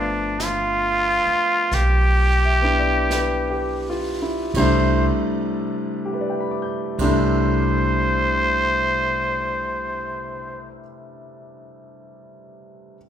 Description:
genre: jazz ballad.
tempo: 40-47 BPM.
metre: 4/4.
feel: swing 66% on 8ths.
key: C major.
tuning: A4 = 439 Hz.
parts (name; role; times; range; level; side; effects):
trumpet with straight mute; melody; 0.0-10.8 s; D4 to C5; -21 LUFS; equal; none.
clear concert grand piano; accompaniment; 0.0-13.0 s; C3 to G6; -24 LUFS; left 1 dB; none.
upright bass; bass; 0.0-10.7 s; G1 to C2; -23 LUFS; equal; none.
jazz brush drum kit; drums; 0.4-7.3 s; brushed snare drum, hi-hat, kick drum, ride cymbal, snare drum; -33 LUFS; right 3 dB; none.
room: moderate recital hall reverb, RT60 1.3 s.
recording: recorded in a church or concert hall.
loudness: -18 LUFS.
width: side -9 dB against mid.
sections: 0.0-4.5 A section; 4.5-10.5 B section.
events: slowing down 0.0-4.5.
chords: 0.0 G7; 4.5 C6.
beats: 0.40 1.72 3.10 | 4.55 6.03 7.50 8.98.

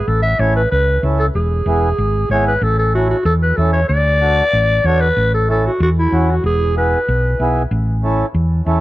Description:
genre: latin, cumbia.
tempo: 188 BPM.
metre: 4/4.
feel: straight.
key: A major.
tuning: A4 = 437 Hz.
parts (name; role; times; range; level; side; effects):
growling clarinet; melody; 0.0-7.5 s; E4 to E5; -17 LUFS; equal; none.
hollow-body short-scale fingered electric bass; bass; 0.1-8.8 s; E1 to E2; -16 LUFS; equal; none.
mellow accordion; accompaniment; 0.4-8.8 s; B3 to A4; -22 LUFS; right 1 dB; none.
room: light reverb.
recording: dark, warm production.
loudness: -13 LUFS.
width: side -16 dB against mid.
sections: 0.0-2.6 A section; 2.6-8.8 B section.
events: none.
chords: 0.1 A; 1.4 E; 2.6 A; 3.9 D; 5.2 A; 6.4 E; 7.7 A.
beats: | 0.08 0.40 0.71 1.03 | 1.35 1.67 1.99 2.31 | 2.62 2.94 3.26 3.58 | 3.90 4.21 4.53 4.85 | 5.17 5.49 5.81 6.12 | 6.44 6.76 7.08 7.40 | 7.71 8.03 8.35 8.67.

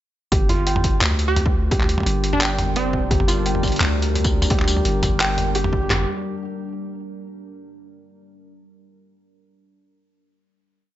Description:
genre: half-time drum and bass.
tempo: 172 BPM.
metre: 4/4.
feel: half-time.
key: G minor.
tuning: A4 = 435 Hz.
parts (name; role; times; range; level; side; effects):
deep dark ambient pad; sustained chords; 1.7-6.1 s; G3 to Bb4; -30 LUFS; left 3 dB; chorus, built-in reverb, vintage 12-bit sampler grit, sidechain pumping.
felt-muted upright piano; arpeggios; 0.3-6.1 s; F4 to G5; -26 LUFS; right 2 dB; digital delay.
long sustained 808-style bass; bass; 0.3-6.1 s; G1 to D2; -22 LUFS; equal; none.
boom bap sampler-style drum kit; drums; 0.3-5.7 s; handclaps, hi-hat, tambourine, toms; -24 LUFS; equal; none.
industrial drum kit; drums; 0.3-6.0 s; handclaps, kick drum, snare drum, toms; -21 LUFS; equal; none.
glassy wavetable pluck; melody; 1.3-3.3 s; C4 to G4; -26 LUFS; right 2 dB; chorus, tape echo.
room: light reverb, digital ambience.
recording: nothing above 7.8 kHz.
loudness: -18 LUFS.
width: side -13 dB against mid.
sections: 0.3-5.9 drop; 5.9-7.3 final chord.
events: drop 0.3-5.9.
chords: 0.3 Gm.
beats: | 0.32 0.67 1.02 1.36 | 1.71 2.06 2.41 2.76 | 3.11 3.46 3.81 4.16 | 4.50 4.85 5.20 5.55 | 5.90.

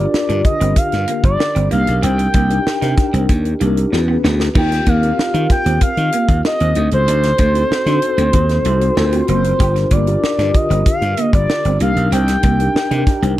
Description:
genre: polished 1980s jazz-funk pop.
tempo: 95 BPM.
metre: 4/4.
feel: straight.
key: unclear.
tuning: A4 = 441 Hz.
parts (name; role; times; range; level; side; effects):
expressive synth lead; melody; 0.0-13.4 s; C5 to G5; -19 LUFS; equal; chorus, slapback echo.
mellow tine electric piano; accompaniment; 0.0-13.4 s; D3 to Bb5; -22 LUFS; left 2 dB; medium stereo tremolo, analog chorus.
slap bass; bass; 0.0-13.3 s; F#1 to Eb3; -16 LUFS; equal; none.
tight funk drum kit; drums; 0.1-13.4 s; crash cymbal, hi-hat, kick drum, snare drum; -17 LUFS; equal; none.
semi-hollow electric guitar; riff; 0.3-13.4 s; A3 to G4; -24 LUFS; right 2 dB; wide subtle chorus.
room: little or no reverb.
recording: dry, close 1970s-style studio recording.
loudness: -13 LUFS.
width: side -14 dB against mid.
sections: 0.0-13.4 A section.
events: drum fill 3.9-4.6; tine electric piano fill 12.8-13.4.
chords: 0.0 Gm7; 1.7 Cm7; 3.9 E6; 4.6 Eb6; 6.8 D7b9; 9.0 D7alt; 9.6 Gm7; 11.8 Cm7.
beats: 0.13 0.77 1.40 | 2.03 2.66 3.29 3.92 | 4.56 5.19 5.82 6.45 | 7.08 7.71 8.34 8.97 | 9.60 10.23 10.86 11.49 | 12.12 12.76 13.39.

